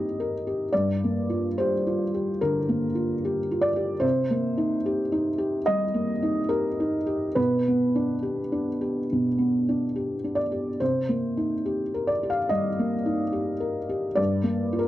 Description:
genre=neoclassical minimalist piano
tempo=71 BPM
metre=4/4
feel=rubato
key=C minor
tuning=A4 = 440 Hz
part: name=felt-muted upright piano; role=solo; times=0.0-14.9 s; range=G2 to F5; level=-23 LUFS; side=equal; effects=none
room=light reverb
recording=dry, close 1970s-style studio recording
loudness=-23 LUFS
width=side -14 dB against mid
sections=0.0-14.9 A section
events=none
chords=0.0 Cm7; 0.7 Gm7; 4.0 Cm7; 7.4 G/B; 10.8 Cm7; 14.2 Gm7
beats=| 0.72 1.56 2.40 3.22 | 4.04 4.86 5.67 6.51 | 7.37 8.23 9.10 9.95 | 10.80 11.65 12.50 13.34 | 14.18

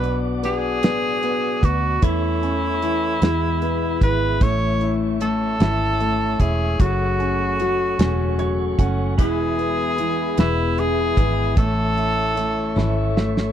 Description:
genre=six-eight pop ballad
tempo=50 BPM (dotted quarters)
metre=6/8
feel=straight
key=A major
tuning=A4 = 440 Hz
part: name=warm tenor saxophone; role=melody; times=0.0-13.1 s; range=E4 to C#5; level=-24 LUFS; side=right 1 dB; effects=none
part: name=clear concert grand piano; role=accompaniment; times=0.0-13.5 s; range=E3 to F#5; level=-26 LUFS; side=right 2 dB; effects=none
part: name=percussive tonewheel organ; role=sustained chords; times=0.0-13.5 s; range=A3 to D6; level=-30 LUFS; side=equal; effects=fast rotary speaker
part: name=fingerpicked steel-string acoustic guitar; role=arpeggios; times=0.0-13.5 s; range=E2 to F#4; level=-28 LUFS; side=left 12 dB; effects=none
part: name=vintage muted fingered electric bass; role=bass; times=0.0-13.5 s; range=E1 to E2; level=-24 LUFS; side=equal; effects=none
part: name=damped 70s drum kit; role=drums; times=0.0-13.5 s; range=hi-hat, kick drum, snare drum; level=-18 LUFS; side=right 1 dB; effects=none
room=little or no reverb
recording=dry, close 1970s-style studio recording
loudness=-18 LUFS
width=side -10 dB against mid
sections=0.0-13.5 A section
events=grand piano fill 8.0-9.2, 12.8-13.5; drum fill 12.8-13.5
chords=0.0 Bm; 2.0 A/E; 3.2 E; 4.4 A; 6.8 F#m; 9.2 E; 11.6 A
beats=0.83 | 2.03 3.22 | 4.41 5.60 | 6.80 7.99 | 9.18 10.38 | 11.57 12.77

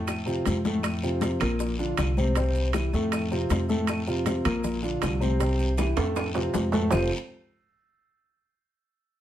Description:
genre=Afro-Cuban jazz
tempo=158 BPM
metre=4/4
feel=straight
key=F major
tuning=A4 = 439 Hz
part: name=dark concert grand piano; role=accompaniment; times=0.0-7.1 s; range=A2 to C5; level=-27 LUFS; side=equal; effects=none
part: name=upright bass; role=bass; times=0.0-7.1 s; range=F1 to F2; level=-28 LUFS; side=equal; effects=none
part: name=bongos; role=percussion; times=0.1-7.0 s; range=none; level=-36 LUFS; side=left 5 dB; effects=none
part: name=claves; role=percussion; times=0.1-7.0 s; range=none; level=-40 LUFS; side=left 1 dB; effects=none
part: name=congas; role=percussion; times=0.1-7.0 s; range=none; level=-32 LUFS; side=left 2 dB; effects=none
part: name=guiro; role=percussion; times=0.1-7.0 s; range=none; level=-40 LUFS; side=left 3 dB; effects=none
part: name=maracas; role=percussion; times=0.1-7.0 s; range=none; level=-45 LUFS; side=right 7 dB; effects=none
part: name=timbales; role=percussion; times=0.1-7.0 s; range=none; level=-32 LUFS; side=right 7 dB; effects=none
room=moderate studio reverb, RT60 0.6 s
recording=lossy compression artefacts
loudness=-24 LUFS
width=side -12 dB against mid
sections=0.0-6.9 A section; 6.9-8.4 B section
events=drum fill 0.0-0.8, 5.8-6.9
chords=0.1 F; 1.6 Bbadd9; 2.4 C; 3.1 F; 4.6 Bbadd9; 5.4 C; 6.2 F; 6.9 Fadd9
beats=0.09 0.47 | 0.85 1.23 1.61 1.99 | 2.37 2.75 3.13 3.51 | 3.89 4.26 4.64 5.03 | 5.40 5.78 6.16 6.54 | 6.92

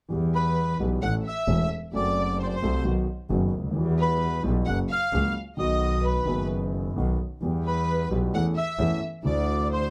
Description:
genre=tango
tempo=132 BPM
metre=4/4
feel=rubato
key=E minor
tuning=A4 = 439 Hz
part: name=warm concert grand piano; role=accompaniment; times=0.1-9.9 s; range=E1 to A4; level=-31 LUFS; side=equal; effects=none
part: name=clear double bass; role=bass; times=0.1-9.9 s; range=E1 to E2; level=-29 LUFS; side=equal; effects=none
part: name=warm studio violin section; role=second line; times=0.3-9.9 s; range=B4 to F#5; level=-36 LUFS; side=equal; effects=none
part: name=bandoneon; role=melody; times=0.4-9.9 s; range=B4 to F#5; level=-31 LUFS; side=equal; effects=none
room=little or no reverb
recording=close, detailed microphones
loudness=-26 LUFS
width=mono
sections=0.1-9.9 A section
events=none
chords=0.1 Em; 1.0 A; 1.9 F#dim; 2.9 B; 3.8 Emadd9; 4.7 F#; 5.6 B; 7.4 Em; 8.3 A/E; 9.3 Dadd9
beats=| 0.11 0.57 1.03 1.49 | 1.95 2.40 2.86 3.31 | 3.77 4.22 4.67 5.13 | 5.58 6.04 6.50 6.97 | 7.43 7.89 8.34 8.80 | 9.25 9.70

